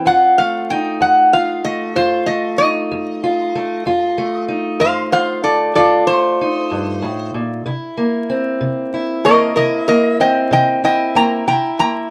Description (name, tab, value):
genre	acoustic country blues, solo or duo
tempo	63 BPM (dotted quarters)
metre	12/8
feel	straight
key	unclear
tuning	A4 = 442 Hz
part	metal-body resonator slide guitar	melody	0.0-12.1 s	A4 to Bb5	-17 LUFS	equal	none
part	fingerpicked steel-string acoustic guitar	accompaniment	0.0-12.1 s	F2 to F4	-21 LUFS	equal	none
room	moderate studio reverb, RT60 0.5 s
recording	vinyl crackle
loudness	-16 LUFS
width	mono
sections	0.0-12.1 A section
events	none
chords	0.1 F7; 7.7 C7